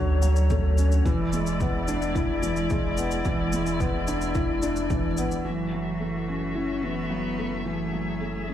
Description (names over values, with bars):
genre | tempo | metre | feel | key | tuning
piano and strings electronica | 109 BPM | 4/4 | straight | F# minor | A4 = 444 Hz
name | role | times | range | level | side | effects
muted string quartet | sustained chords | 0.0-8.5 s | D3 to E5 | -32 LUFS | left 1 dB | sidechain pumping
felt-muted upright piano | riff | 0.0-8.5 s | E3 to F#4 | -28 LUFS | equal | low-pass filter, digital delay
warm sub bass | bass | 0.0-8.5 s | D1 to D2 | -28 LUFS | equal | sidechain pumping
electronic shaker and crash cymbal | drums | 0.2-5.6 s | none | -40 LUFS | left 4 dB | low-pass filter on perc, low-pass filter on cymbals
electronic kick drum | drums | 0.5-5.0 s | none | -28 LUFS | equal | none
dark cello | melody | 5.5-8.5 s | E3 to C#4 | -33 LUFS | left 1 dB | digital delay
room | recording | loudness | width
light reverb | small room reverb | -23 LUFS | side -11 dB against mid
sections
0.0-5.5 A section; 5.5-8.5 B section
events
filter sweep on felt piano 5.5-8.5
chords
0.0 Dmaj7; 1.1 E7; 5.5 F#m7